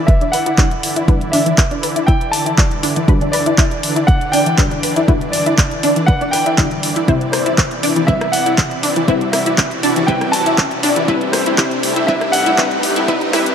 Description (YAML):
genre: progressive house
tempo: 120 BPM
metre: 4/4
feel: straight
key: unclear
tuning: A4 = 440 Hz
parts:
  - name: warm grand piano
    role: melody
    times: 0.0-13.5 s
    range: C5 to A5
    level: -21 LUFS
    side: equal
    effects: sidechain pumping, dub echo
  - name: supersaw pad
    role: sustained chords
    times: 0.0-13.5 s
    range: C3 to D5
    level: -22 LUFS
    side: equal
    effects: sidechain pumping
  - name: wide unison pluck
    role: stabs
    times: 0.0-13.5 s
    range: C3 to D5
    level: -23 LUFS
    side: left 2 dB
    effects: sidechain pumping, dub echo
  - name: riser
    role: sound effects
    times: 3.7-13.5 s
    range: none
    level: -28 LUFS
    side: right 2 dB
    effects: none
  - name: analog pluck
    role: arpeggios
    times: 0.1-13.4 s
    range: E3 to B4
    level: -19 LUFS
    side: left 1 dB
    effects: ensemble chorus, vintage 12-bit sampler grit, sidechain pumping, dub echo
  - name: electronic kick drum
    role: drums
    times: 0.1-13.2 s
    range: none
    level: -14 LUFS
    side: equal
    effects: none
  - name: pop drum kit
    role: drums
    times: 0.1-13.5 s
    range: handclaps, hi-hat, rim click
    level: -20 LUFS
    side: equal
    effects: overdrive, sidechain pumping on hats
room: moderate lush hall reverb, RT60 1.9 s, digital ambience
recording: high-pass filter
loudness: -13 LUFS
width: side -8 dB against mid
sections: 0.0-13.5 A section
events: build-up 0.0-13.5; filter sweep on synth pluck 0.0-13.5; filter sweep 0.0-13.5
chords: 0.0 Em7; 3.1 Gmaj7/D; 7.1 Cmaj7; 11.1 Am7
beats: 0.08 0.58 | 1.08 1.58 2.08 2.58 | 3.08 3.58 4.08 4.58 | 5.08 5.58 6.08 6.58 | 7.08 7.58 8.08 8.58 | 9.08 9.58 10.08 10.58 | 11.08 11.58 12.08 12.58 | 13.08